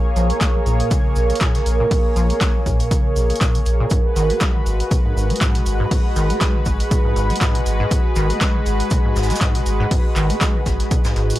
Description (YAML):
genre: acid house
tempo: 120 BPM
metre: 4/4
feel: swing 55% on 16ths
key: unclear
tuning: A4 = 439 Hz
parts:
  - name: lush unison pad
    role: sustained chords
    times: 0.0-11.4 s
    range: Ab3 to Db5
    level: -25 LUFS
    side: left 1 dB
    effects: chorus, sidechain pumping
  - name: deep dark ambient pad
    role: texture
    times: 0.0-11.4 s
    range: Ab4 to Db6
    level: -26 LUFS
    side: right 2 dB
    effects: chorus, built-in reverb, sidechain pumping
  - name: deep acid bass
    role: riff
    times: 0.2-11.4 s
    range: Ab2 to Db4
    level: -24 LUFS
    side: equal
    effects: tube saturation, lush chorus, sidechain pumping, analog delay
  - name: warm sub bass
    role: bass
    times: 0.2-11.3 s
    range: Ab1 to Bb1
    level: -20 LUFS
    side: equal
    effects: sidechain pumping
  - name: punchy analog drum machine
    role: drums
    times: 0.2-11.4 s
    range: handclaps, hi-hat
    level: -26 LUFS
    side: equal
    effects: none
  - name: vintage brush drum kit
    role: drums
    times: 0.2-11.4 s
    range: hi-hat, shaker, snare drum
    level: -34 LUFS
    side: equal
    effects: high-pass filter on hats, high-pass filter on snare, high-pass filter on perc, high-pass filter on room
  - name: electronic kick drum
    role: drums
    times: 0.4-11.0 s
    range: none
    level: -18 LUFS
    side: equal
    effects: none
room: light reverb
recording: none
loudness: -16 LUFS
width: side -15 dB against mid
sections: 0.0-11.4 A section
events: filter sweep on acid bass 0.0-11.4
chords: 0.0 Bbm7; 3.9 Abm7